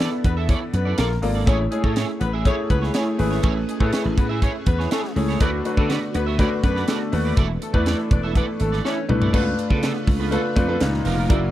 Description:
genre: polished 1980s jazz-funk pop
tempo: 122 BPM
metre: 4/4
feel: straight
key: unclear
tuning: A4 = 440 Hz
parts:
  - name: clear grand piano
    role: accompaniment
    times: 0.0-11.5 s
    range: A#2 to D5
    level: -25 LUFS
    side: left 2 dB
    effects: lush chorus
  - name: phased string machine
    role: sustained chords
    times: 0.0-11.5 s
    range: C#3 to B4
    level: -32 LUFS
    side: right 1 dB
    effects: ensemble chorus, phaser
  - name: electric guitar at the edge of break-up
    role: riff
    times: 0.0-11.5 s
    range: B3 to E5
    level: -30 LUFS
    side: right 8 dB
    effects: analog chorus
  - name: slap bass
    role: bass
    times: 0.0-11.5 s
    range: E1 to D3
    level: -23 LUFS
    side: equal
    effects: none
  - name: crisp fusion drum kit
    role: drums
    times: 0.0-11.4 s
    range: crash cymbal, hi-hat, kick drum, snare drum, toms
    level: -22 LUFS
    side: equal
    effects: none
  - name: mellow horn section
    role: second line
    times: 0.2-9.0 s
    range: F#3 to D5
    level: -30 LUFS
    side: left 5 dB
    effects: none
room: small room ambience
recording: dry, close 1970s-style studio recording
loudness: -19 LUFS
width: side -13 dB against mid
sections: 0.0-9.3 A section; 9.3-11.5 B section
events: drum fill 8.8-9.3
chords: 0.0 E7sus4; 1.0 A#maj7; 1.5 Amaj7; 5.4 D6; 7.4 E7sus4; 9.3 C#7b9b13; 10.8 C#13

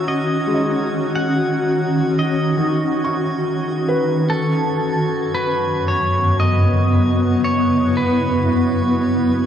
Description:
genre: ambient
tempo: 57 BPM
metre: 4/4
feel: straight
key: unclear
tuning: A4 = 439 Hz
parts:
  - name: pedal steel guitar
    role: melody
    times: 0.0-9.5 s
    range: A4 to F#5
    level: -23 LUFS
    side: equal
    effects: diffuse ambient delay
  - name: granular cloud pad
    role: sustained chords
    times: 0.0-9.5 s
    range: F#2 to F#4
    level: -17 LUFS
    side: equal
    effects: built-in reverb
  - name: felt-muted upright piano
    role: arpeggios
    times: 0.0-9.5 s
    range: D#3 to D#6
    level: -27 LUFS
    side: equal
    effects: diffuse ambient delay
  - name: drifting glass-harmonics texture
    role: texture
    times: 0.0-9.5 s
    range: F#4 to G#6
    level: -27 LUFS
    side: left 2 dB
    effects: chorus, built-in reverb
room: wet cathedral reverb, RT60 7.0 s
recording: dark, warm production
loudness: -16 LUFS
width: side -9 dB against mid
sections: 0.0-9.5 A section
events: none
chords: 0.0 F#sus2; 4.3 C#madd9/F#

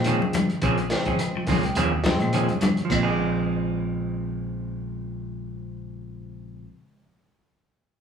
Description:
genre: afrobeat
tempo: 105 BPM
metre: 4/4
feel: swing 56% on 16ths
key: Bb minor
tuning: A4 = 440 Hz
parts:
  - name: barky tine electric piano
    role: accompaniment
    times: 0.0-6.7 s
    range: Db3 to Ab5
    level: -32 LUFS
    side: left 2 dB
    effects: overdrive
  - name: fingered electric bass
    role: bass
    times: 0.0-6.6 s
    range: Ab1 to Bb2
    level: -28 LUFS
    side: left 1 dB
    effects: none
  - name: crunchy breakbeat drum kit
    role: drums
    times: 0.0-3.0 s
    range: crash cymbal, hi-hat, kick drum, snare drum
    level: -31 LUFS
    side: equal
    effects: none
  - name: clean electric guitar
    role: arpeggios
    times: 0.1-3.1 s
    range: Bb2 to F3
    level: -30 LUFS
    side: left 3 dB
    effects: spring reverb
  - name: semi-hollow electric guitar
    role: stabs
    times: 0.1-6.8 s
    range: F3 to Ab4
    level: -28 LUFS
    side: right 4 dB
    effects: none
  - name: shekere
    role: percussion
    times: 0.1-3.1 s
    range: none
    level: -36 LUFS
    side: equal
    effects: none
  - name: congas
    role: percussion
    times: 0.2-3.1 s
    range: none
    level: -29 LUFS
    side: left 3 dB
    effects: none
  - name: claves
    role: percussion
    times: 0.3-3.1 s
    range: none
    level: -37 LUFS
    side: left 2 dB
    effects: none
room: moderate large studio reverb, RT60 1.2 s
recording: band playing live in one room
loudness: -22 LUFS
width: side -7 dB against mid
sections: 0.0-2.9 A section; 2.9-5.2 B section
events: tine electric piano fill 1.2-2.9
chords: 0.0 Bbm9

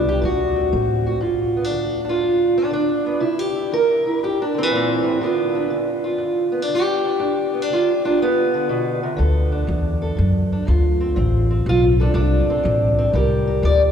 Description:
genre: acoustic country blues, solo or duo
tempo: 121 BPM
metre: 4/4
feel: swing 68% on 8ths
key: G mixolydian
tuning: A4 = 441 Hz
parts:
  - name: fingerpicked steel-string acoustic guitar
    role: melody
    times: 0.0-13.9 s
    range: G2 to D5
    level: -18 LUFS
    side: equal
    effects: none
  - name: upright bass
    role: bass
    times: 0.0-1.2, 9.2-13.9 s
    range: A1 to A2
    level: -19 LUFS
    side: equal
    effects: none
room: wet cathedral reverb, RT60 5.2 s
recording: recorded in a church or concert hall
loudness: -17 LUFS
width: side -8 dB against mid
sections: 0.0-1.2 A section; 1.2-13.9 B section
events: steel-string acoustic guitar solo 1.2-13.9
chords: 0.2 D7; 1.2 G7(no3); 3.2 C7; 5.2 G7; 9.2 D7; 13.1 C7(no3)

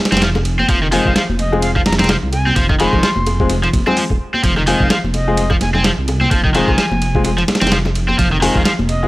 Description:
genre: breakbeat, breaks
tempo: 128 BPM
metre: 4/4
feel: swing 57% on 16ths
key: F minor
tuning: A4 = 439 Hz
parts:
  - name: cranked stack guitar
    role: riff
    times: 0.1-8.7 s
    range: Eb3 to C4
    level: -19 LUFS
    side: equal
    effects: overdrive, tube saturation
  - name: dark detuned saw bass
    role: bass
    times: 0.1-9.1 s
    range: Eb1 to C2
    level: -19 LUFS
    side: equal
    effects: none
  - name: dusty soul sampler-style drum kit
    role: drums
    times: 0.1-9.0 s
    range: hi-hat, kick drum, ride cymbal, snare drum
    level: -18 LUFS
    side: equal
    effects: studio reverb
  - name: congas and bongos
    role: percussion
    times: 0.1-9.1 s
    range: none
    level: -25 LUFS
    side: left 2 dB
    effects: none
  - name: warm concert grand piano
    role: stabs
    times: 0.9-9.1 s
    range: Ab3 to Ab4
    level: -21 LUFS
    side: left 3 dB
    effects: tape echo
  - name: bright reedy silver concert flute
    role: melody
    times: 1.1-9.1 s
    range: Eb5 to C6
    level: -24 LUFS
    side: equal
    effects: small speaker sound, tape echo
room: small room ambience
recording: dry, gritty hardware recording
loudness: -13 LUFS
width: side -19 dB against mid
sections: 0.0-9.1 A section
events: none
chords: 0.0 Fm

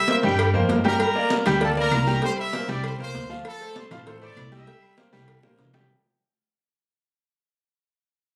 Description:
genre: latin, salsa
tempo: 196 BPM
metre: 4/4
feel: straight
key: unclear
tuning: A4 = 440 Hz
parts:
  - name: bright trumpet section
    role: melody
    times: 0.0-5.0 s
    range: G4 to E6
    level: -29 LUFS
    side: equal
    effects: none
  - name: bright grand piano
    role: accompaniment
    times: 0.0-5.9 s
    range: F3 to G5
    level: -28 LUFS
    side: equal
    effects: none
  - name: congas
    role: percussion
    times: 0.1-5.8 s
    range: none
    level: -31 LUFS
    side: equal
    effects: none
  - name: cowbell and bongos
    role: percussion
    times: 0.1-5.8 s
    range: none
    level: -33 LUFS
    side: equal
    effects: none
  - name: timbales and agogo bells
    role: percussion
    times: 0.1-5.9 s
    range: none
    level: -37 LUFS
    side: equal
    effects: none
  - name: upright bass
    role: bass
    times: 0.2-5.9 s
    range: A1 to G2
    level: -29 LUFS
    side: equal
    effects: none
  - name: claves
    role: percussion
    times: 0.4-5.4 s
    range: none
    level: -40 LUFS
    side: equal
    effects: none
  - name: guiro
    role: percussion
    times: 1.0-5.9 s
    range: none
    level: -43 LUFS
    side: equal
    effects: none
room: light reverb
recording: recorded on a phone in the room, club ambience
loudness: -22 LUFS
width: mono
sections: 0.0-5.9 A section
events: fade-out 0.0-5.9; drum fill 0.5-1.0, 5.1-5.9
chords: 0.0 C7(no3); 1.0 Gm; 2.2 C7; 3.5 Dm7; 4.7 C7

